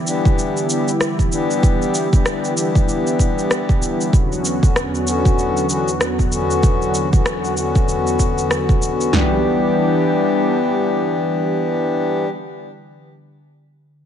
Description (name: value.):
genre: organic downtempo.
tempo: 96 BPM.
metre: 4/4.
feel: swing 59% on 16ths.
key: E dorian.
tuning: A4 = 440 Hz.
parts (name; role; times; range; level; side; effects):
warm analog pad; sustained chords; 0.0-12.3 s; E2 to G4; -22 LUFS; right 2 dB; chorus, sidechain pumping.
quartz singing bowl; texture; 0.0-9.1 s; D3; -36 LUFS; left 3 dB; none.
pedal harmonium; accompaniment; 0.1-12.3 s; D3 to G4; -20 LUFS; left 4 dB; sidechain pumping, digital delay.
electronic cabasa and rim click; drums; 0.1-9.1 s; none; -23 LUFS; left 1 dB; none.
deep house drum kit; drums; 0.3-9.3 s; kick drum, snare drum, toms; -16 LUFS; right 1 dB; overdrive.
room: light reverb.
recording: nothing above 10.6 kHz.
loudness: -15 LUFS.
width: side -9 dB against mid.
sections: 0.0-9.1 A section; 9.1-11.6 B section.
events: none.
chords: 0.0 Em7; 4.1 Bmadd9/E; 9.1 Em7.